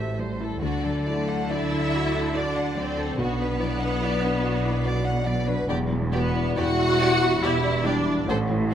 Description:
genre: cinematic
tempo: 71 BPM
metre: 3/4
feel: rubato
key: E minor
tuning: A4 = 437 Hz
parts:
  - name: rich studio violin section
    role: melody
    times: 0.0-8.7 s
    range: A4 to F#5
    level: -33 LUFS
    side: left 3 dB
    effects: none
  - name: rich studio violin section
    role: second line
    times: 0.0-8.7 s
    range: F#4 to F#5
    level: -32 LUFS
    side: equal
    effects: none
  - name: clear studio viola section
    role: accompaniment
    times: 0.0-8.7 s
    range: A3 to F#4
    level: -28 LUFS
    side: right 1 dB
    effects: none
  - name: felt-muted upright piano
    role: accompaniment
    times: 0.0-8.7 s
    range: A1 to D5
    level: -30 LUFS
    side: equal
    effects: none
  - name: mellow French horn section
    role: sustained chords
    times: 0.0-8.7 s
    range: A3 to E4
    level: -31 LUFS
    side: left 3 dB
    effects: none
  - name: concert harp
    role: arpeggios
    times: 0.0-8.7 s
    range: A2 to D6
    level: -32 LUFS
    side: left 8 dB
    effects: none
  - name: rich studio cello section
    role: bass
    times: 0.0-8.7 s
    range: E2 to D3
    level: -31 LUFS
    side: right 2 dB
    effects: none
  - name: rich studio double bass section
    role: bass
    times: 0.0-8.7 s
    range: E1 to D2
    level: -29 LUFS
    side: right 4 dB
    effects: none
room: moderate scoring stage reverb, RT60 1.7 s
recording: close, detailed microphones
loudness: -22 LUFS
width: side -9 dB against mid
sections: 0.0-8.7 A section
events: none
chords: 0.0 Am7; 0.6 D; 3.2 Bm; 5.7 Em7

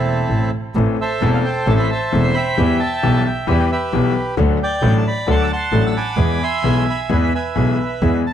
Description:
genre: tango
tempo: 132 BPM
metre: 4/4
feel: rubato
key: A minor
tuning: A4 = 440 Hz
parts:
  - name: bandoneon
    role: melody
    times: 0.0-8.3 s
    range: C4 to E6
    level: -21 LUFS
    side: right 2 dB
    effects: plate reverb, analog delay
  - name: clear concert grand piano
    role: accompaniment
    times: 0.0-8.2 s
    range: E1 to A4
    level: -20 LUFS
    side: left 4 dB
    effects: none
  - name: rich double bass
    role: bass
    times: 0.0-8.2 s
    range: E1 to E2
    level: -19 LUFS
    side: right 1 dB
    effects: none
room: light reverb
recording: dark, warm production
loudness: -15 LUFS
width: side -10 dB against mid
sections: 0.8-8.3 A section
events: none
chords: 0.0 Am; 2.6 Em; 4.4 D; 6.2 E

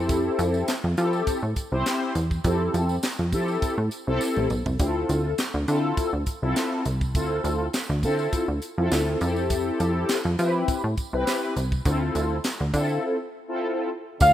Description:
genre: early-eighties boogie funk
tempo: 102 BPM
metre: 4/4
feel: straight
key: D dorian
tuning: A4 = 441 Hz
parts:
  - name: mellow synth brass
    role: accompaniment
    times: 0.0-13.9 s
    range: C4 to C5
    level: -26 LUFS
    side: left 1 dB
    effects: chorus, phaser
  - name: plucky analog bass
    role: bass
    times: 0.0-14.3 s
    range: A1 to F3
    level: -25 LUFS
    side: equal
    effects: none
  - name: tight funk drum kit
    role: drums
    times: 0.1-14.3 s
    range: handclaps, hi-hat, kick drum, snare drum, toms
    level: -28 LUFS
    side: equal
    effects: none
  - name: tambourine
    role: percussion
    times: 0.1-14.3 s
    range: none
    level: -40 LUFS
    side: right 6 dB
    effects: none
  - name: warm velvety synth lead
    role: melody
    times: 14.2-14.3 s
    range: F5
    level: -13 LUFS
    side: equal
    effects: chorus
  - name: mellow French horn section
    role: sustained chords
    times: 14.2-14.3 s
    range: C3 to D4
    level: -33 LUFS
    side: right 3 dB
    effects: none
room: light reverb, small room ambience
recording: rough home demo mix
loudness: -22 LUFS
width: side -12 dB against mid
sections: 0.0-14.2 A section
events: drum fill 4.2-4.8; break 13.0-14.2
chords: 0.0 Fmaj7; 4.8 Dm7; 9.2 Fmaj7; 11.9 Dm9

